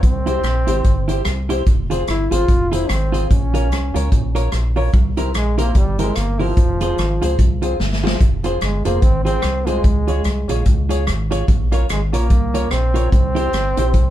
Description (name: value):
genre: ska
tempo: 147 BPM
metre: 4/4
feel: swing 58% on 8ths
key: F harmonic minor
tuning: A4 = 439 Hz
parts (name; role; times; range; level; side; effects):
- breathy trombone; melody; 0.0-14.1 s; F3 to F4; -23 LUFS; equal; none
- fingered electric bass; bass; 0.0-14.1 s; F1 to Db2; -20 LUFS; equal; none
- swinging big-band drum kit; drums; 0.0-14.1 s; hi-hat, kick drum, rim click, snare drum; -18 LUFS; equal; none
- clean electric guitar; accompaniment; 0.3-13.9 s; E4 to Db5; -26 LUFS; right 3 dB; spring reverb
- warm upright piano; stabs; 0.3-13.9 s; C4 to Db5; -26 LUFS; left 3 dB; none
room: moderate studio ambience, RT60 0.5 s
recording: band playing live in one room, lossy compression artefacts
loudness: -15 LUFS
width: side -12 dB against mid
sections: 0.0-8.2 A section; 8.2-14.1 A section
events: drum fill 7.8-8.2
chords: 0.0 C; 1.7 Fm; 3.3 Bbm; 4.9 C7; 6.6 Fm; 9.8 Db; 13.1 C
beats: | 0.03 0.44 0.85 1.26 | 1.67 2.08 2.49 2.90 | 3.30 3.71 4.12 4.53 | 4.94 5.35 5.76 6.16 | 6.57 6.98 7.39 7.80 | 8.21 8.62 9.02 9.43 | 9.84 10.25 10.66 11.07 | 11.48 11.89 12.30 12.71 | 13.12 13.53 13.94